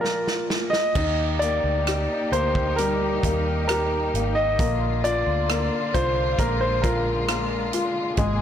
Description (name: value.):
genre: pop ballad.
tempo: 66 BPM.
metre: 4/4.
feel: straight.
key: Eb major.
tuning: A4 = 439 Hz.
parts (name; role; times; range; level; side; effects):
clear concert grand piano; melody; 0.0-7.7 s; Bb4 to Eb5; -24 LUFS; equal; none.
clear upright piano; accompaniment; 0.0-8.4 s; Bb2 to G4; -28 LUFS; left 4 dB; none.
natural country drum kit; drums; 0.0-8.4 s; crash cymbal, hi-hat, kick drum, rim click, snare drum; -27 LUFS; right 1 dB; soft clipping on snare.
rich studio string section; sustained chords; 1.0-8.4 s; C3 to Ab4; -30 LUFS; left 1 dB; none.
vintage muted fingered electric bass; bass; 1.0-8.4 s; Ab1 to Eb2; -27 LUFS; right 1 dB; none.
room: light reverb, small room ambience.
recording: blown-out, overdriven recording, overdrive.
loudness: -21 LUFS.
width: side -9 dB against mid.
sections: 1.0-8.4 A section.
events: drum fill 0.0-1.0.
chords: 0.0 Bbsus4; 1.0 Ebmaj7; 4.6 Bb.